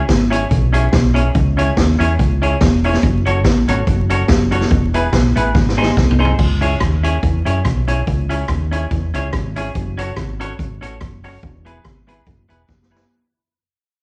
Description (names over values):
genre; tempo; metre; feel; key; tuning
ska; 143 BPM; 4/4; swing 55% on 8ths; C# minor; A4 = 440 Hz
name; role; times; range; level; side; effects
fingered electric bass; bass; 0.0-13.0 s; E1 to F#2; -20 LUFS; equal; none
street-band drum kit; drums; 0.1-13.1 s; crash cymbal, hi-hat, kick drum, rim click, snare drum, toms; -20 LUFS; equal; vintage 12-bit sampler grit
clean electric guitar; accompaniment; 0.3-13.0 s; B3 to C#5; -24 LUFS; equal; none
room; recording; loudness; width
moderate large studio reverb, RT60 1.2 s; band playing live in one room, vinyl crackle; -16 LUFS; mono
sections
0.0-6.4 A section; 6.4-13.1 B section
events
drum fill 5.6-6.4, 12.7-13.1; fade-out 6.4-13.1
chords
0.0 C#m; 3.0 F#m; 4.7 E; 5.6 G#; 6.4 C#m; 9.8 F#m; 11.4 E